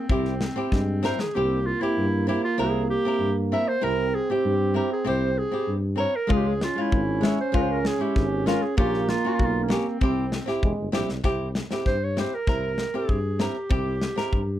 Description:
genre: klezmer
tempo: 97 BPM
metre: 2/4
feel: straight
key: C phrygian dominant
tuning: A4 = 441 Hz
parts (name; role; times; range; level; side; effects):
- warm clarinet; melody; 0.0-14.6 s; C4 to E5; -27 LUFS; equal; none
- breathy trombone; second line; 0.0-11.2 s; G3 to Db4; -29 LUFS; right 6 dB; none
- flamenco guitar; accompaniment; 0.1-14.4 s; Ab3 to Bb4; -28 LUFS; left 1 dB; none
- mellow tuba; bass; 0.1-14.6 s; E1 to G2; -28 LUFS; equal; none
- modern studio drum kit; drums; 0.1-1.3, 6.3-14.5 s; kick drum, snare drum; -26 LUFS; left 1 dB; none
room: light reverb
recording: dark, warm production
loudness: -22 LUFS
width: side -12 dB against mid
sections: 0.0-1.3 A section; 1.3-11.2 A section; 11.2-14.6 B section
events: drum fill 0.7-1.3; clarinet solo 11.2-14.6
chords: 0.1 C; 6.3 Db; 8.8 Bbm; 10.0 C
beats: | 0.09 0.71 | 1.33 1.96 | 2.58 3.20 | 3.82 4.44 | 5.06 5.68 | 6.30 6.92 | 7.54 8.15 | 8.77 9.39 | 10.01 10.62 | 11.24 11.86 | 12.47 13.09 | 13.71 14.32

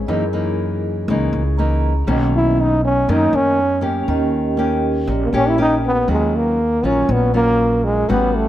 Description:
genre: bossa nova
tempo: 120 BPM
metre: 4/4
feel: straight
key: unclear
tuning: A4 = 440 Hz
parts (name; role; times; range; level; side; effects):
- nylon-string guitar; accompaniment; 0.0-8.5 s; F#2 to G4; -21 LUFS; left 1 dB; none
- vibraphone with soft mallets; accompaniment; 0.0-6.1 s; B3 to A#5; -24 LUFS; right 2 dB; none
- upright bass; bass; 0.0-8.5 s; A1 to F#2; -21 LUFS; equal; none
- warm trombone; melody; 2.4-8.5 s; Ab3 to E4; -17 LUFS; equal; none
room: light reverb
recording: none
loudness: -15 LUFS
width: side -12 dB against mid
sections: 0.0-6.1 A section; 6.1-8.5 B section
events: trombone solo 0.0-6.1; vibraphone fill 1.3-2.1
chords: 0.1 F#13; 2.1 Bmaj9; 4.1 D#7; 6.1 Ebm9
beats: | 0.08 0.58 1.08 1.58 | 2.08 2.58 3.08 3.58 | 4.08 4.58 5.08 5.58 | 6.09 6.59 7.09 7.59 | 8.09

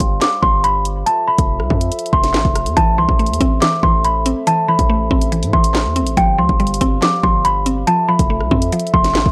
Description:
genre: hip hop, drill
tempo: 141 BPM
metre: 4/4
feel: half-time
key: A minor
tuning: A4 = 441 Hz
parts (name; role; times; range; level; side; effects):
- worn celesta; melody; 0.0-9.3 s; G5 to D6; -19 LUFS; equal; low-pass filter
- dark French horn section; sustained chords; 0.0-9.3 s; F3 to F5; -28 LUFS; equal; none
- hard-hitting 808-style bass; bass; 0.0-9.3 s; F1 to A2; -22 LUFS; equal; tube saturation
- drill drum kit; drums; 0.0-9.3 s; handclaps, hi-hat, kick drum, rim click, snare drum; -21 LUFS; equal; none
- mallet-like synth pluck; accompaniment; 2.8-9.3 s; E3 to C4; -22 LUFS; equal; chorus, low-pass filter
room: little or no reverb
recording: dry, gritty hardware recording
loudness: -16 LUFS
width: mono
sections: 0.0-9.3 A section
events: none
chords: 0.0 G7sus4; 1.1 Fmaj7; 2.8 Am; 6.2 G7sus4; 7.9 Fmaj7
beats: 0.21 0.64 | 1.06 1.49 1.92 2.34 | 2.77 3.19 3.62 4.04 | 4.47 4.89 5.32 5.75 | 6.17 6.60 7.02 7.45 | 7.87 8.30 8.72 9.15

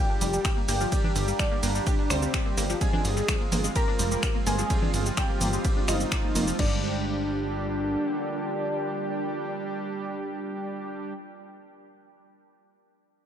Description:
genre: melodic techno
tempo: 127 BPM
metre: 4/4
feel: straight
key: G phrygian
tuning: A4 = 442 Hz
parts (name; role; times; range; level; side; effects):
- fat analog lead; melody; 0.0-11.1 s; C4 to Bb4; -32 LUFS; left 1 dB; analog chorus, cassette tape, sidechain pumping, ping-pong delay
- glassy wavetable pluck; second line; 0.0-11.2 s; C5 to Bb5; -36 LUFS; equal; chorus, sidechain pumping, dub echo
- deep dark ambient pad; sustained chords; 0.0-11.1 s; Ab3 to D6; -36 LUFS; right 2 dB; chorus, built-in reverb, sidechain pumping
- tight sequenced synth; arpeggios; 0.0-6.8 s; D3 to G4; -34 LUFS; equal; chorus, phaser, sidechain pumping, dub echo
- analog synth brass; stabs; 0.0-11.1 s; F3 to G4; -34 LUFS; right 2 dB; chorus, sidechain pumping, dub echo
- plucky analog bass; bass; 0.2-8.0 s; F1 to D2; -30 LUFS; equal; sidechain pumping
- punchy analog drum machine; drums; 0.2-6.7 s; congas, crash cymbal, finger snaps, hi-hat, ride cymbal, shaker; -31 LUFS; right 1 dB; sidechain pumping on cymbals, sidechain pumping on perc, sidechain pumping on hats
- electronic kick drum; drums; 0.4-6.7 s; none; -27 LUFS; equal; none
room: light reverb, digital ambience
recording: none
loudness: -24 LUFS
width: side -9 dB against mid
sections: 0.0-6.6 A section; 6.6-10.4 B section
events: drop 0.0-6.6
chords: 0.0 Gm7; 2.8 Fm; 6.6 Gm7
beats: 0.45 | 0.92 1.40 1.87 2.34 | 2.81 3.28 3.76 4.23 | 4.70 5.17 5.65 6.12 | 6.59 7.06 7.54 8.01 | 8.48 8.95 9.43 9.90

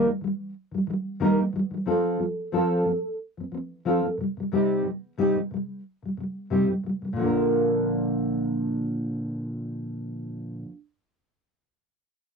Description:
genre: pop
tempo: 90 BPM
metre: 4/4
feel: swing 55% on 16ths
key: Bb major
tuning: A4 = 440 Hz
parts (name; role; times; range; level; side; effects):
- nylon-string guitar; accompaniment; 0.0-10.8 s; Bb2 to Bb4; -24 LUFS; equal; double-tracked left and right
room: moderate booth ambience, RT60 0.2 s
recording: dry, close 1970s-style studio recording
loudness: -24 LUFS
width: side -5 dB against mid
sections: 0.0-7.2 A section; 7.2-9.8 B section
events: none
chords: 0.0 Eb; 1.9 F; 4.2 Cm; 7.2 Bb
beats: 0.54 1.21 | 1.87 2.53 3.19 3.86 | 4.52 5.18 5.85 6.51 | 7.17 7.83 8.50 9.16

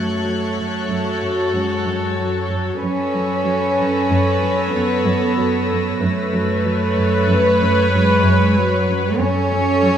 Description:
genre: cinematic, suspense film score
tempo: 94 BPM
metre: 5/4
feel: straight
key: unclear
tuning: A4 = 440 Hz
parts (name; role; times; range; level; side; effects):
- dark studio violin section; melody; 0.0-10.0 s; C#5; -28 LUFS; left 3 dB; none
- clear studio violin section; second line; 0.0-10.0 s; A4 to C#5; -24 LUFS; left 1 dB; none
- warm studio viola section; accompaniment; 0.0-10.0 s; F#4 to B4; -24 LUFS; left 1 dB; none
- warm studio cello section; riff; 0.0-10.0 s; F#2 to F#3; -24 LUFS; equal; none
- warm studio cello section; bass; 0.0-10.0 s; F#3 to C#4; -21 LUFS; right 2 dB; none
- warm studio double bass section; bass; 0.0-10.0 s; F#2; -24 LUFS; right 2 dB; none
- warm studio violin section; texture; 0.0-8.8 s; C#6 to A#6; -31 LUFS; left 5 dB; none
room: moderate concert hall reverb, RT60 1.8 s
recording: none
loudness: -16 LUFS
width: side -9 dB against mid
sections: 0.0-10.0 A section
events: none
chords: 0.0 F#m; 2.8 Aadd9/F#; 9.2 F#m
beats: 0.27 0.90 1.54 2.18 | 2.82 3.46 4.10 4.73 5.37 | 6.01 6.65 7.29 7.92 8.56 | 9.20 9.84

